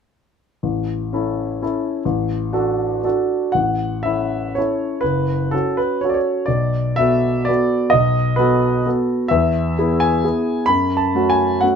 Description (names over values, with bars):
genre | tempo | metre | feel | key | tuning
classical, romantic triple-time dance for piano with dotted rhythms | 112-138 BPM | 3/4 | rubato | A major | A4 = 439 Hz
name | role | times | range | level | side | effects
warm grand piano | solo | 0.6-11.8 s | F#1 to B5 | -16 LUFS | equal | none
room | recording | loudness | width
moderate studio reverb, RT60 0.6 s | minimal, uncompressed stereo recording | -16 LUFS | side -6 dB against mid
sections
0.6-3.6 A section; 3.6-11.8 B section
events
none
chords
0.6 A; 2.1 D/A; 3.6 A; 5.0 F#m; 6.5 Bm7; 9.3 E; 10.7 F#m